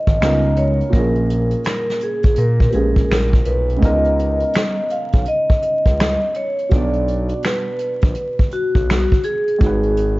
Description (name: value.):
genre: lo-fi hip hop.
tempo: 83 BPM.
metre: 4/4.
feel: swing 62% on 16ths.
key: unclear.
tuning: A4 = 441 Hz.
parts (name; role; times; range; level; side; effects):
vibraphone with medium mallets; melody; 0.0-10.2 s; F#4 to E#5; -20 LUFS; equal; low-pass filter.
dark upright piano; accompaniment; 0.0-10.2 s; A#2 to D5; -24 LUFS; right 2 dB; low-pass filter.
smooth synth bass; bass; 0.1-10.2 s; G#1 to A#2; -19 LUFS; equal; none.
vintage brush drum kit; drums; 0.1-10.2 s; finger snaps, hi-hat, kick drum, snare drum; -17 LUFS; equal; none.
room: small room ambience.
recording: vinyl crackle, nothing above 7.6 kHz.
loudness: -15 LUFS.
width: side -20 dB against mid.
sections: 0.0-3.8 A section; 3.8-10.2 A section.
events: none.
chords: 0.2 C#13; 0.9 A#m7; 3.8 C#13; 6.7 Bm; 9.6 G#m7.